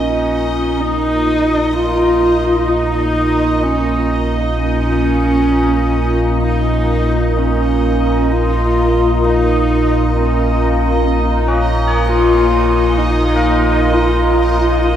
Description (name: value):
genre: dark ambient drone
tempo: 64 BPM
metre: 4/4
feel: straight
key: Bb minor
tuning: A4 = 440 Hz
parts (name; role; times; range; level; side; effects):
- dark horsehead fiddle; melody; 0.0-15.0 s; Db4 to F4; -16 LUFS; equal; tape echo
- deep dark ambient pad; sustained chords; 0.0-15.0 s; Bb3 to Bb4; -19 LUFS; equal; chorus, built-in reverb
- tubular bells; arpeggios; 0.0-15.0 s; Db4 to Ab4; -23 LUFS; left 1 dB; tape echo
- deep rumbling drone; drone; 0.0-15.0 s; Bb1 to Bb2; -18 LUFS; equal; built-in reverb, lush chorus
- bubbling stepped-filter texture; texture; 0.0-15.0 s; Eb4 to Eb5; -22 LUFS; right 1 dB; chorus, built-in reverb
room: wet echo chamber reverb, RT60 2.6 s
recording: echo-heavy mix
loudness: -12 LUFS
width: side -10 dB against mid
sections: 0.0-15.0 A section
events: fade-in on tubular bells 0.0-15.0; filter sweep on synth drone 0.0-15.0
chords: 0.0 Bbm